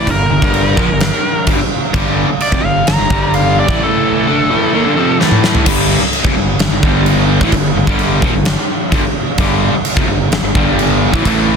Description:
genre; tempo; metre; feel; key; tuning
hard rock; 129 BPM; 4/4; straight; G dorian; A4 = 440 Hz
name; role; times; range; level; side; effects
biting lead guitar; melody; 0.0-5.2 s; A4 to Bb5; -17 LUFS; equal; overdrive
distorted electric guitar; riff; 0.0-11.6 s; F2 to D4; -20 LUFS; equal; overdrive
overdriven semi-hollow guitar; riff; 0.0-11.6 s; F2 to D4; -19 LUFS; left 12 dB; none
sludgy distorted guitar; riff; 0.0-11.6 s; F2 to D4; -19 LUFS; right 11 dB; overdrive
fuzz fingered electric bass; bass; 0.0-11.6 s; F1 to Bb1; -18 LUFS; equal; overdrive
huge arena drum kit; drums; 0.1-11.4 s; crash cymbal, kick drum, snare drum, toms; -15 LUFS; equal; soft clipping on kick
room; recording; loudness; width
moderate studio reverb, RT60 0.7 s; dense, heavily limited modern master; -11 LUFS; side -6 dB against mid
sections
0.0-5.7 A section; 5.7-11.6 B section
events
lead electric guitar solo 0.0-5.7; drum fill 5.2-5.7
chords
0.0 Gm; 3.8 A5; 4.3 Gm; 5.2 A5; 5.7 G5

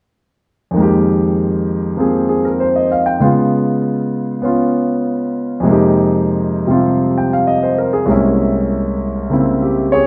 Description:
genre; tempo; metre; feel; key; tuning
jazz; 98 BPM; 4/4; swing 69% on 8ths; F minor; A4 = 440 Hz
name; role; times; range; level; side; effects
warm concert grand piano; melody; 0.7-10.1 s; C2 to G5; -15 LUFS; equal; none
room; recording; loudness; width
wet studio reverb, RT60 0.7 s; heard from further back in the room; -15 LUFS; mono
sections
0.8-10.1 A section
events
none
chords
0.8 Fm11; 3.2 Db7; 5.6 Fm11; 8.1 C7b9b13

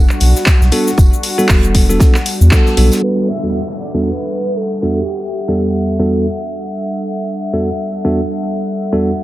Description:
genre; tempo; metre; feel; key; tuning
deep house; 117 BPM; 4/4; swing 57% on 16ths; E minor; A4 = 440 Hz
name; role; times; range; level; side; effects
hollow soft pad; sustained chords; 0.0-9.2 s; G3 to F#5; -21 LUFS; equal; chorus, sidechain pumping
round analog bass; bass; 0.0-2.9 s; E1 to E2; -11 LUFS; equal; sidechain pumping
house drum kit; drums; 0.1-9.2 s; crash cymbal, handclaps, hi-hat, shaker; -19 LUFS; left 1 dB; none
deep reggae drum kit; drums; 0.2-3.0 s; hi-hat, snare drum, tambourine; -29 LUFS; right 2 dB; high-pass filter on hats, high-pass filter on snare, high-pass filter on perc, high-pass filter on room
electronic kick drum; drums; 0.5-2.6 s; none; -10 LUFS; equal; none
bell-like tine electric piano; stabs; 0.7-9.1 s; E2 to A4; -17 LUFS; right 1 dB; sidechain pumping, tape echo
mellow horn-like synth lead; melody; 2.5-6.5 s; G4 to E5; -23 LUFS; equal; analog chorus, tape echo
downlifter; sound effects; 3.1-7.1 s; none; -31 LUFS; equal; none
room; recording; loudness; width
light reverb; low-pass filter; -12 LUFS; side -16 dB against mid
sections
0.0-3.0 A section; 3.0-9.2 B section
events
band accent 2.5; filter sweep 3.0-9.2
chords
0.0 Em11

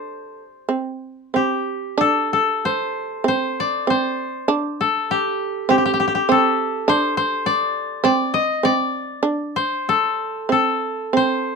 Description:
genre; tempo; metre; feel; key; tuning
japanese traditional, Japanese chamber music; 50 BPM; 2/4; uneven beats, rubato; unclear; A4 = 440 Hz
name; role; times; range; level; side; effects
koto; melody; 0.0-11.6 s; G4 to Eb5; -20 LUFS; left 3 dB; none
shamisen; second line; 0.0-11.6 s; C4 to D4; -21 LUFS; right 4 dB; none
room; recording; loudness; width
light reverb; dark, warm production; -18 LUFS; side -4 dB against mid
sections
0.0-2.0 A section; 2.0-11.6 B section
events
none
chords
none

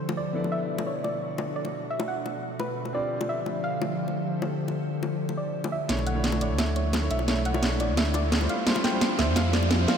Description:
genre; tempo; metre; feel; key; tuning
liquid drum and bass; 173 BPM; 4/4; straight; B minor; A4 = 440 Hz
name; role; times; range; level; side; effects
soft round pluck; melody; 0.0-10.0 s; B4 to G5; -32 LUFS; right 1 dB; chorus, ping-pong delay
warm grand piano; accompaniment; 0.0-10.0 s; G3 to D5; -32 LUFS; equal; low-pass filter, analog delay
glassy FM pad; sustained chords; 0.0-10.0 s; B2 to C#6; -32 LUFS; left 1 dB; ensemble chorus, built-in reverb
bongos; percussion; 0.1-9.7 s; none; -36 LUFS; left 4 dB; none
sub bass with octave; bass; 5.9-9.9 s; A1 to F2; -26 LUFS; equal; none
garage drum kit; drums; 5.9-10.0 s; hi-hat, snare drum; -26 LUFS; right 1 dB; none
riser; sound effects; 7.4-10.0 s; none; -37 LUFS; left 1 dB; none
room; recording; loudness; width
wet cathedral reverb, RT60 5.2 s; dreamy mix soaked in reverb; -24 LUFS; side -7 dB against mid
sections
0.0-5.9 A section; 5.9-10.0 B section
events
build-up 5.9-10.0; drum fill 5.9-10.0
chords
0.3 Bm11; 2.9 Dm11; 5.9 Bm11; 8.5 Dm11

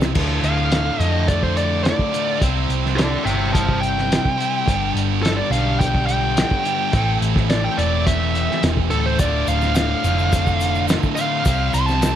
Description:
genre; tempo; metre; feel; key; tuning
classic rock; 106 BPM; 4/4; straight; D dorian; A4 = 439 Hz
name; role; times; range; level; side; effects
sludgy distorted guitar; riff; 0.0-12.2 s; D2 to C4; -26 LUFS; left 11 dB; overdrive
tight distorted guitar; riff; 0.0-12.2 s; D2 to C5; -24 LUFS; right 14 dB; distortion
hollow-body short-scale picked electric bass; bass; 0.0-12.2 s; D1 to F2; -22 LUFS; equal; none
cloth-damped thuddy drum kit; drums; 0.0-12.2 s; crash cymbal, hi-hat, kick drum, snare drum; -22 LUFS; equal; none
tube shaker; percussion; 0.0-0.1, 9.2-12.2 s; none; -39 LUFS; left 13 dB; none
bluesy overdriven lead guitar; melody; 0.4-12.2 s; A4 to C6; -23 LUFS; equal; distortion, slapback echo
room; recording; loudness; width
light reverb; none; -17 LUFS; side -10 dB against mid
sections
0.2-12.2 A section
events
drum fill 0.0; lead electric guitar solo 0.2-12.2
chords
0.2 Dm; 2.4 C; 4.7 G; 6.9 Am; 9.2 Dm; 11.5 C

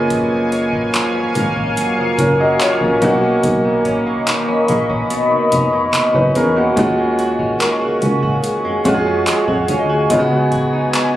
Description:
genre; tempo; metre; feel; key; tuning
contemporary R&B; 72 BPM; 4/4; straight; Eb minor; A4 = 444 Hz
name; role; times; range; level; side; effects
clear baby grand piano; accompaniment; 0.0-11.2 s; Ab3 to Eb5; -17 LUFS; equal; none
deep dark ambient pad; sustained chords; 0.0-11.2 s; Bb3 to Db6; -20 LUFS; equal; chorus, built-in reverb, sidechain pumping
direct-recorded clean electric guitar; arpeggios; 0.0-11.2 s; Gb2 to Gb4; -23 LUFS; right 1 dB; wide subtle chorus, tape echo
solid FM bass; bass; 0.0-10.8 s; F1 to F2; -21 LUFS; equal; none
soft synth bell; texture; 0.0-10.6 s; Ab4 to Eb5; -26 LUFS; equal; chorus, tape echo
booming analog drum machine; drums; 0.1-11.1 s; handclaps, hi-hat, kick drum; -22 LUFS; equal; none
room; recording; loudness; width
light reverb, digital ambience; recorded on a phone in the room, club reverb; -13 LUFS; side -13 dB against mid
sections
0.0-11.2 A section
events
none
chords
0.0 Gbmaj7; 3.0 Bmaj9; 6.8 Ebm11; 10.1 Db9sus4

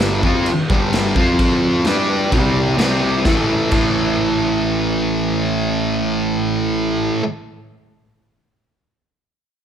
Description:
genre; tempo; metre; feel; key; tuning
garage rock duo or trio; 129 BPM; 4/4; straight; A minor; A4 = 439 Hz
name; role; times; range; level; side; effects
thick fuzz guitar; riff; 0.0-7.2 s; G2 to G4; -17 LUFS; equal; distortion
fuzz picked electric bass; bass; 0.0-7.1 s; G1 to G2; -24 LUFS; equal; overdrive
raw garage drum kit; drums; 0.0-3.8 s; crash cymbal, kick drum, snare drum; -20 LUFS; equal; none
room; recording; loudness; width
light reverb; band playing live in one room; -15 LUFS; side -9 dB against mid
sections
0.0-3.3 A section; 3.3-7.0 B section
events
none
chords
0.0 G5; 1.2 F5; 1.9 G5; 2.3 C5; 3.3 A5

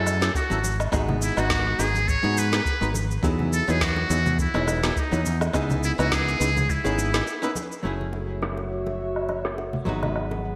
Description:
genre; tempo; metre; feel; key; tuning
sunset chillout; 104 BPM; 4/4; swing 55% on 16ths; F# dorian; A4 = 440 Hz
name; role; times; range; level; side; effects
trumpet with metal mute; melody; 0.0-7.6 s; D#4 to C#5; -30 LUFS; equal; delay
archtop guitar, miked and amplified; accompaniment; 0.0-10.6 s; F#3 to B4; -31 LUFS; equal; none
fretless electric bass; bass; 0.0-10.6 s; E1 to G#2; -29 LUFS; equal; none
electronic woodblock, shaker and snare drum; drums; 0.1-10.6 s; none; -32 LUFS; equal; low-pass filter on perc, low-pass filter on snare, low-pass filter on room, gated reverb
bongos and congas; percussion; 0.1-10.4 s; none; -37 LUFS; equal; none
electronic kick drum; drums; 0.3-6.8 s; none; -31 LUFS; equal; overdrive
airy breathy pad; sustained chords; 8.2-10.6 s; F#4 to B5; -34 LUFS; equal; chorus
room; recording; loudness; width
moderate plate reverb, RT60 2.0 s; bright 1980s-style digital production; -24 LUFS; mono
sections
0.0-7.8 A section; 7.8-10.6 B section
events
break 7.3-7.8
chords
0.0 F#m7; 0.6 G#m7; 3.2 Emaj7; 5.5 C#m7; 7.8 F#m7; 9.9 G#m7

